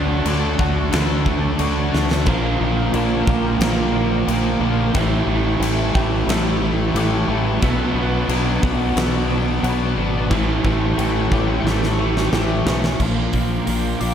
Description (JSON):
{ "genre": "rock, shoegaze and dream pop", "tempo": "90 BPM", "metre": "4/4", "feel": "straight", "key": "unclear", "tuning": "A4 = 440 Hz", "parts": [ { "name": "analog string pad", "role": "sustained chords", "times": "0.0-14.1 s", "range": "E4 to D6", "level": "-29 LUFS", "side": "equal", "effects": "ensemble chorus" }, { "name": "twelve-string electric guitar", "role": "arpeggios", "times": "0.0-14.1 s", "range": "E3 to G4", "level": "-30 LUFS", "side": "left 9 dB", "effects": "wide subtle chorus, slapback echo" }, { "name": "cranked stack guitar", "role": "riff", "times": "0.0-13.0 s", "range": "A2 to D4", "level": "-25 LUFS", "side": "right 1 dB", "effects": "overdrive" }, { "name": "crunchy overdriven guitar", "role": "riff", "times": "0.0-14.1 s", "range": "A2 to G4", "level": "-24 LUFS", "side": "right 9 dB", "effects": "reverse reverb" }, { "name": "thick fuzz guitar", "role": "riff", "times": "0.0-14.1 s", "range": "A2 to D4", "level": "-25 LUFS", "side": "left 8 dB", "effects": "distortion, lush chorus" }, { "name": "growling fingered electric bass", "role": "bass", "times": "0.0-14.1 s", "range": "G#1 to D2", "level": "-22 LUFS", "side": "equal", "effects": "overdrive" }, { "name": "huge arena drum kit", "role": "drums", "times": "0.3-14.1 s", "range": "crash cymbal, hi-hat, kick drum, snare drum", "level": "-24 LUFS", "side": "equal", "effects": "none" } ], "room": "light reverb, studio ambience", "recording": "none", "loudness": "-17 LUFS", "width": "side -8 dB against mid", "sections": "0.0-13.0 A section; 13.0-14.1 B section", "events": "drum fill 1.9-2.3, 11.7-13.0", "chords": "0.0 Dmaj7; 2.3 Bb6; 4.9 A5; 7.6 Bm7; 10.3 A7; 13.0 Bb6" }